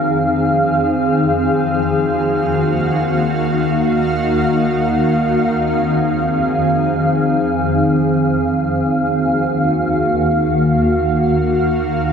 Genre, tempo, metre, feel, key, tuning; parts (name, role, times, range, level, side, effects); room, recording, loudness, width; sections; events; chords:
hip hop; free time; Eb dorian; A4 = 436 Hz
shimmering ambient pad; solo; 0.0-12.1 s; Eb2 to F5; -14 LUFS; equal; chorus, built-in reverb, tape echo
moderate spring reverb, RT60 2.7 s; echo-heavy mix; -14 LUFS; side -7 dB against mid
0.0-1.8 A section; 1.8-12.1 B section
0.0 Fm7; 1.8 Ebmadd9; 5.3 Fm7; 8.8 Ebmadd9